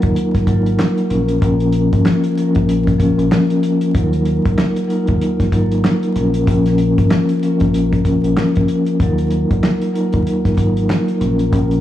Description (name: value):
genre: hip hop, boom-bap hip-hop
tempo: 95 BPM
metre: 4/4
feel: swing 59% on 16ths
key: Eb minor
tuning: A4 = 440 Hz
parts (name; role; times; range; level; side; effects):
- vibraphone with soft mallets; accompaniment; 0.0-11.8 s; F3 to Bb4; -15 LUFS; left 1 dB; high-pass filter, low-pass filter
- deep dub fingered electric bass; bass; 0.0-11.8 s; Ab1 to Eb2; -19 LUFS; equal; none
- cloth-damped thuddy drum kit; drums; 0.0-11.8 s; handclaps, hi-hat, kick drum, snare drum; -19 LUFS; equal; none
room: light reverb, small room ambience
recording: vinyl crackle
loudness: -13 LUFS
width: side -13 dB against mid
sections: 0.0-11.8 A section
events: none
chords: 0.0 Ebmadd9; 1.1 Bbm; 3.9 Ebmadd9; 6.2 Bbm; 9.0 Ebmadd9; 11.2 Bbm